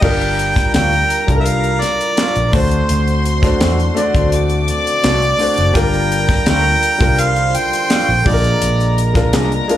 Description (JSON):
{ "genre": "lush 1970s-style soul", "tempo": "84 BPM", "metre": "4/4", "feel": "straight", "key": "unclear", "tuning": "A4 = 440 Hz", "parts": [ { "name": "warm harmonica", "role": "melody", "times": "0.0-9.0 s", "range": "C5 to G5", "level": "-17 LUFS", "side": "right 1 dB", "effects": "none" }, { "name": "warm chamber string section", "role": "second line", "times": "0.0-9.8 s", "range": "Bb4 to D6", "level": "-24 LUFS", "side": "equal", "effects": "slapback echo" }, { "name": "warm grand piano", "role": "accompaniment", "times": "0.0-9.8 s", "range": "G3 to D5", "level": "-20 LUFS", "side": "left 2 dB", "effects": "slapback echo" }, { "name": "mellow French horn section", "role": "sustained chords", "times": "0.0-9.8 s", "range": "D3 to Bb4", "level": "-26 LUFS", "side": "equal", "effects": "none" }, { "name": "vintage muted fingered electric bass", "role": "bass", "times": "0.0-9.6 s", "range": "F#1 to Fb2", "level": "-17 LUFS", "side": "equal", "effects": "none" }, { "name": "tight funk drum kit", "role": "drums", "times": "0.0-9.8 s", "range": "crash cymbal, hi-hat, kick drum, snare drum", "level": "-18 LUFS", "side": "equal", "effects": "none" }, { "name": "electric guitar through a small old amp", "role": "riff", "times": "0.7-9.5 s", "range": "C4 to Bb4", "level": "-24 LUFS", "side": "right 3 dB", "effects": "slapback echo" } ], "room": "studio ambience", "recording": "live gig heard through the venue's PA, club reverb", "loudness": "-12 LUFS", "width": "side -12 dB against mid", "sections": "0.0-9.8 A section", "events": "none", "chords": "0.0 Gm7; 2.5 D7; 5.8 Gm7; 8.3 Bb7" }